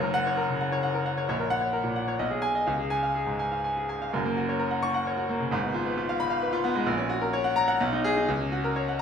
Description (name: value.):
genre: classical, virtuoso piano study.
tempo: 121-134 BPM.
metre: 3/4.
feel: rubato.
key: F# major.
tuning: A4 = 438 Hz.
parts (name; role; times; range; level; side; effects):
bright grand piano; solo; 0.0-9.0 s; F#1 to C#6; -24 LUFS; left 1 dB; none.
room: wet stone room reverb, RT60 1.2 s.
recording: heard from further back in the room.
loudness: -25 LUFS.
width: side -7 dB against mid.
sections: 0.0-4.1 A section; 4.1-9.0 B section.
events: none.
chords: 0.0 F#; 1.3 F#/A#; 2.2 G#m/B; 2.7 C#; 4.1 F#; 5.5 Fdim/Ab; 6.9 F#/A#; 7.8 G#m/B; 8.3 F#/C#.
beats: 0.38 0.83 | 1.28 1.74 2.20 | 2.68 3.17 3.65 | 4.14 4.61 5.07 | 5.52 5.97 6.42 | 6.88 7.33 7.80 | 8.28 8.76.